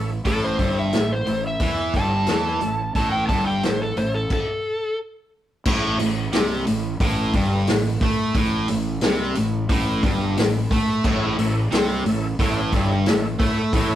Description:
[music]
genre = blues rock power trio and southern rock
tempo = 89 BPM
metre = 4/4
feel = straight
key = A mixolydian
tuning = A4 = 439 Hz
[part]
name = tonewheel organ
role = sustained chords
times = 0.0-4.2, 11.0-14.0 s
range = E4 to F#5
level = -32 LUFS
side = right 1 dB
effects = slow rotary speaker, overdrive, chorus vibrato
[part]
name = sludgy distorted guitar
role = riff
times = 0.0-14.0 s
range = G2 to A3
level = -23 LUFS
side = equal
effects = overdrive
[part]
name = fuzz fingered electric bass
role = bass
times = 0.0-14.0 s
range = G1 to A2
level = -28 LUFS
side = equal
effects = overdrive
[part]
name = vintage drum kit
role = drums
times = 0.2-13.9 s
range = crash cymbal, hi-hat, kick drum, snare drum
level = -23 LUFS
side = equal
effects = none
[part]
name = overdriven slide guitar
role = melody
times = 0.3-5.0 s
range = A4 to A5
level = -24 LUFS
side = equal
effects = none
[sound]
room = light reverb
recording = rough rehearsal-room recording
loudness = -19 LUFS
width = side -12 dB against mid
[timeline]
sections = 0.0-5.7 A section; 5.7-14.0 B section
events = stop 4.3-5.7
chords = 0.0 A

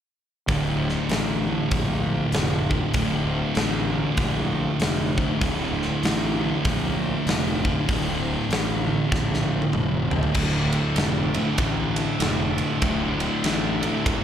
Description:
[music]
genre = stoner and doom metal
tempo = 97 BPM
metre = 4/4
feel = swing 62% on 8ths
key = D minor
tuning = A4 = 439 Hz
[part]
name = thick fuzz guitar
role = riff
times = 0.5-14.2 s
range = D2 to D3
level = -27 LUFS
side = left 6 dB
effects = distortion
[part]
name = thick fuzz guitar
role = riff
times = 0.5-14.2 s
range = D2 to D3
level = -26 LUFS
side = right 6 dB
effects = distortion, slapback echo
[part]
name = fuzz fingered electric bass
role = bass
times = 0.5-14.2 s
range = D1 to Bb1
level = -28 LUFS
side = equal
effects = overdrive
[part]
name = big rock drum kit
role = drums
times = 0.5-14.2 s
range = crash cymbal, hi-hat, kick drum, ride cymbal, snare drum, toms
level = -27 LUFS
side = equal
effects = none
[part]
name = bright tonewheel organ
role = sustained chords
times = 10.4-14.2 s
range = D3 to E4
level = -34 LUFS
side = equal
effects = overdrive, slow rotary speaker
[sound]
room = light reverb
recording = live gig heard through the venue's PA, recital hall reverb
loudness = -21 LUFS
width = side -9 dB against mid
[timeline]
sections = 0.5-10.4 A section; 10.4-14.2 B section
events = drum fill 9.1-10.4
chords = 0.5 Dm

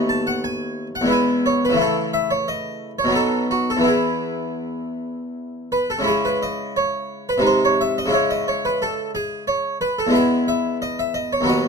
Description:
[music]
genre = classical, baroque-style suite movement for harpsichord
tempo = 80-92 BPM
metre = 3/4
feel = rubato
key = E major, C# minor from 6.1 s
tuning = A4 = 440 Hz
[part]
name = harpsichord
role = solo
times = 0.0-11.7 s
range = D#2 to A5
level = -18 LUFS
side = equal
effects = none
[sound]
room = light reverb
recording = dark, warm production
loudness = -18 LUFS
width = side -5 dB against mid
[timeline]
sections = 0.0-6.1 A section; 6.1-11.7 A section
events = none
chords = 0.0 B7/D#; 1.1 E; 1.8 A/C#; 3.1 B7; 3.9 E; 6.1 C#m; 7.4 G#/B#; 8.1 C#m; 10.1 E

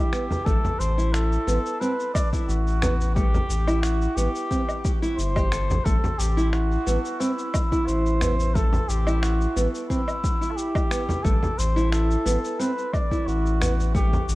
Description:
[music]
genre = organic downtempo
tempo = 89 BPM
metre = 4/4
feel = straight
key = A dorian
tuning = A4 = 440 Hz
[part]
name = trumpet with cup mute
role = melody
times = 0.0-14.3 s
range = E4 to D5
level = -29 LUFS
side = equal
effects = digital delay, shimmer reverb
[part]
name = nylon-string guitar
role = arpeggios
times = 0.0-14.0 s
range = A3 to A4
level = -27 LUFS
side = right 1 dB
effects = low-pass filter, shimmer reverb
[part]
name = electronic finger snaps, shaker and woodblock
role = drums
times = 0.1-14.4 s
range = none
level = -33 LUFS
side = equal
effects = studio reverb
[part]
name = frame drum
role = percussion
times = 0.3-14.3 s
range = none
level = -29 LUFS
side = equal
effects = none
[part]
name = round analog bass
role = bass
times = 0.5-14.4 s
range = G1 to A1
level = -23 LUFS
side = equal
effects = none
[part]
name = electronic kick drum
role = drums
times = 0.5-14.1 s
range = none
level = -25 LUFS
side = equal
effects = overdrive, studio reverb
[sound]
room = light reverb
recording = worn, warbling old tape, cassette tape, warbly pitch drift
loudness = -21 LUFS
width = side -19 dB against mid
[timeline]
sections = 0.0-14.4 A section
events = none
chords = 0.0 A7(no3)

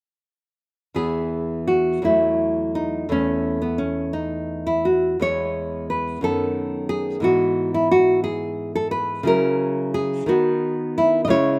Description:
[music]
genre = classical, baroque-style dance for nylon-string guitar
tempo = 53-60 BPM (dotted quarters)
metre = 6/8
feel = rubato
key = E major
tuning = A4 = 440 Hz
[part]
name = nylon-string guitar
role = solo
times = 0.9-11.6 s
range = E2 to D#5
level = -22 LUFS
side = equal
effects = none
[sound]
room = little or no reverb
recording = recorded outdoors, with no room sound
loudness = -22 LUFS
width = mono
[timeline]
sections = 1.0-11.6 A section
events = none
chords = 1.0 E; 2.0 F#m7/E; 3.1 A69/E; 5.2 E; 6.2 B7/F#; 7.2 E/G#; 9.3 F#7/C#; 10.3 B/D#

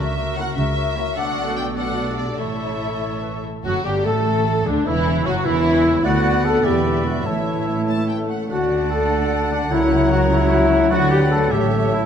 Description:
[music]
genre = classical, dramatic, fast romantic movement for symphony orchestra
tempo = 99 BPM (dotted quarters)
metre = 6/8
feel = rubato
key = D major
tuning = A4 = 440 Hz
[part]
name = warm symphonic violin section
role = melody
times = 0.0-12.1 s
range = D4 to A5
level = -29 LUFS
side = left 4 dB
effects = none
[part]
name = clear clarinet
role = second line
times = 0.0-12.1 s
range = D4 to D5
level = -31 LUFS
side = left 2 dB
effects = none
[part]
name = silver concert flute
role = second line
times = 0.0-12.1 s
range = D4 to D6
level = -31 LUFS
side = left 1 dB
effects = none
[part]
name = warm oboe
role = second line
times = 0.0-12.1 s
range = D4 to F#5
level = -31 LUFS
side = right 3 dB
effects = none
[part]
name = concert harp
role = arpeggios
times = 0.0-12.1 s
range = A2 to D5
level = -27 LUFS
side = left 7 dB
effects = none
[part]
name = rich chamber double bass section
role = bass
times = 0.0-12.1 s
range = E1 to D2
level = -26 LUFS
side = right 3 dB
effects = none
[part]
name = warm studio cello section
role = bass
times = 0.0-12.1 s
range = D2 to D3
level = -26 LUFS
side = right 4 dB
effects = none
[part]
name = warm symphonic violin section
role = second line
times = 0.4-12.1 s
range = D4 to D5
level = -33 LUFS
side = left 4 dB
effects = none
[part]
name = warm studio viola section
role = accompaniment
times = 0.4-12.1 s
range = D3 to E4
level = -28 LUFS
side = right 2 dB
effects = none
[part]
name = mellow bassoon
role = accompaniment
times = 3.6-12.1 s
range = D3 to A3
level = -28 LUFS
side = right 2 dB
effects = none
[part]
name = mellow French horn section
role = sustained chords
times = 3.6-12.0 s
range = D4 to A4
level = -21 LUFS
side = left 3 dB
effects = none
[part]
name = warm trumpet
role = stabs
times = 3.6-12.0 s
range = D4 to A4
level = -26 LUFS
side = right 2 dB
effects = none
[sound]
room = wet recital hall reverb, RT60 1.4 s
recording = none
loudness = -17 LUFS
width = side -8 dB against mid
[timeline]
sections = 0.0-3.7 A section; 3.7-12.1 A section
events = none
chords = 0.0 F#7/C#; 1.2 Bm7; 2.4 A; 3.7 D; 4.9 F#7/E; 6.0 Bm/D; 6.7 Em7; 7.3 A; 8.5 D; 9.7 F#7/C#; 10.9 Bm/D; 11.5 A7

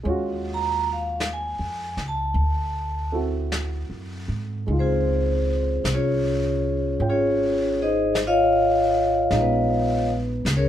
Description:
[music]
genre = jazz ballad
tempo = 52 BPM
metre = 4/4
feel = swing 66% on 8ths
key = unclear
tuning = A4 = 440 Hz
[part]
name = dark grand piano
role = accompaniment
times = 0.0-10.7 s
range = G#3 to G5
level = -31 LUFS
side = right 1 dB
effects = none
[part]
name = upright bass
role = bass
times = 0.1-10.7 s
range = G#1 to G#2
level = -26 LUFS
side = equal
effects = none
[part]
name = vintage brush drum kit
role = drums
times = 0.1-10.7 s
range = brushed snare drum, hi-hat, snare drum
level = -34 LUFS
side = left 1 dB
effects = none
[part]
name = vibraphone with medium hard mallets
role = melody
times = 0.5-10.7 s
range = B3 to A#5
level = -22 LUFS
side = left 1 dB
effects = none
[sound]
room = light reverb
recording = minimal, uncompressed stereo recording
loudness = -21 LUFS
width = side -10 dB against mid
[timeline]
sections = 0.0-10.7 A section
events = vibraphone solo 0.0-10.7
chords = 0.1 D#m11; 2.4 D9; 4.7 C#maj9; 9.3 A#m7

